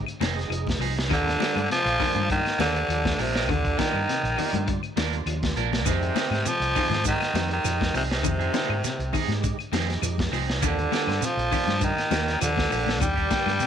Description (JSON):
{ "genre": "afrobeat", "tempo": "101 BPM", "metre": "4/4", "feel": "straight", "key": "unclear", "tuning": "A4 = 439 Hz", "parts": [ { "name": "percussive tonewheel organ", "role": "accompaniment", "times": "0.0-13.5 s", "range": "G3 to D5", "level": "-38 LUFS", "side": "right 14 dB", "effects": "slow rotary speaker, overdrive, chorus vibrato" }, { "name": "clean electric guitar", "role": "arpeggios", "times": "0.0-13.7 s", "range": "C3 to F3", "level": "-35 LUFS", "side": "left 12 dB", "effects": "none" }, { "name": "crunchy breakbeat drum kit", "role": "drums", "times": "0.1-13.7 s", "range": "hi-hat, kick drum, snare drum", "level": "-30 LUFS", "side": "equal", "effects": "none" }, { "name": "claves", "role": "percussion", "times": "0.1-13.6 s", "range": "none", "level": "-36 LUFS", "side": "left 16 dB", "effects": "none" }, { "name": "electric guitar at the edge of break-up", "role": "stabs", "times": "0.2-13.5 s", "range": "G3 to Bb4", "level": "-33 LUFS", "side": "right 13 dB", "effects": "harmonic tremolo" }, { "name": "fingered electric bass", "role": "bass", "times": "0.2-13.6 s", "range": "F1 to Ab2", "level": "-28 LUFS", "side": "equal", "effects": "none" }, { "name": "congas", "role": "percussion", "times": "0.2-13.6 s", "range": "none", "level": "-34 LUFS", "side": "left 14 dB", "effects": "none" }, { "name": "raspy tenor saxophone", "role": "melody", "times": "1.1-13.7 s", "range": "C3 to G3", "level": "-26 LUFS", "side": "equal", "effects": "none" }, { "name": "clear trumpet", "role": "second line", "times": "1.1-13.7 s", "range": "C4 to G4", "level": "-36 LUFS", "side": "right 11 dB", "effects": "none" }, { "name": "mellow trombone section", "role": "second line", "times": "1.1-13.7 s", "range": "C2 to G2", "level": "-39 LUFS", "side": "left 12 dB", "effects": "none" }, { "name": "shekere", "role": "percussion", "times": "5.9-13.7 s", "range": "none", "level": "-32 LUFS", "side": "right 8 dB", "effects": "none" } ], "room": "light reverb", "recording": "1960s-style stereo with parts hard left and right", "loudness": "-22 LUFS", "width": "side -8 dB against mid", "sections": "0.0-13.7 A section", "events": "none", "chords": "0.0 Fm7; 1.1 Ebmaj7; 5.9 Fm7; 10.6 Ebmaj7" }